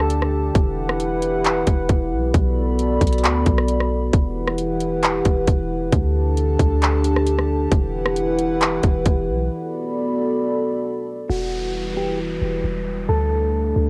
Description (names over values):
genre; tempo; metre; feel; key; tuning
hip hop, atmospheric cloud-rap; 134 BPM; 4/4; half-time; E minor; A4 = 440 Hz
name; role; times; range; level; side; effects
dark analog pad; sustained chords; 0.0-13.9 s; D3 to B5; -24 LUFS; equal; chorus, sidechain pumping, low-pass filter, cassette tape, plate reverb
warm 808-style bass; bass; 0.0-13.9 s; E1 to D2; -25 LUFS; equal; none
trap drum kit; drums; 0.0-9.2 s; handclaps, hi-hat, kick drum, rim click; -22 LUFS; equal; cassette tape
downlifter; sound effects; 0.0-0.6, 11.3-13.9 s; none; -39 LUFS; equal; none
mellow electric guitar; melody; 11.3-13.9 s; F#4 to A4; -27 LUFS; equal; low-pass filter, cassette tape, analog delay, plate reverb
room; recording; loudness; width
light reverb; home recording on cassette; -20 LUFS; mono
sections
0.0-11.3 A section; 11.3-13.9 B section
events
break 9.5-11.3; filter sweep 11.3-13.9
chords
0.0 Dsus4; 0.6 Emadd9; 2.3 Bm7; 4.1 Emadd9; 5.9 Dsus4; 7.7 Emadd9; 9.5 Bm7; 11.3 Emadd9; 13.1 Dsus4